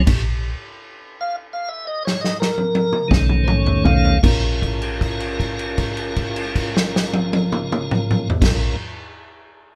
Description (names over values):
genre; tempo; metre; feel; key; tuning
slow blues; 52-63 BPM (dotted quarters); 12/8; straight; Bb minor; A4 = 439 Hz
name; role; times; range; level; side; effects
tonewheel organ; sustained chords; 0.0-8.8 s; D#3 to F5; -25 LUFS; equal; slow rotary speaker
woody FM bass; bass; 0.0-8.7 s; Bb1 to B1; -23 LUFS; equal; none
vintage drum kit; drums; 0.1-8.6 s; crash cymbal, kick drum, ride cymbal, snare drum, toms; -23 LUFS; equal; none
room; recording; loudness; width
light reverb; band playing live in one room; -20 LUFS; mono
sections
0.0-4.2 A section; 4.2-8.9 B section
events
slowing down 0.0-4.2; tonewheel organ solo 0.0-4.2; stop 0.1-3.1; drum fill 2.0-4.2; held note 4.2-8.4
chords
0.1 Bbsus4; 3.1 B7; 4.2 Bbm7